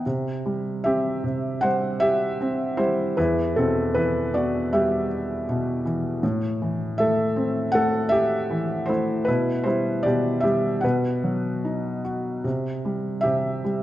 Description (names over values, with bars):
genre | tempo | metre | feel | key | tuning
classical, lyrical solo piano | 77 BPM | 4/4 | rubato | E minor | A4 = 442 Hz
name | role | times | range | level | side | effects
felt-muted upright piano | solo | 0.0-13.8 s | E2 to F#5 | -21 LUFS | equal | none
room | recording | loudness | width
moderate concert hall reverb, RT60 1.9 s | dark, warm production | -21 LUFS | side -14 dB against mid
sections
0.0-13.8 A section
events
none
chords
0.0 C; 3.2 Emadd9; 6.2 Am; 9.3 Em/B; 10.8 B; 12.4 C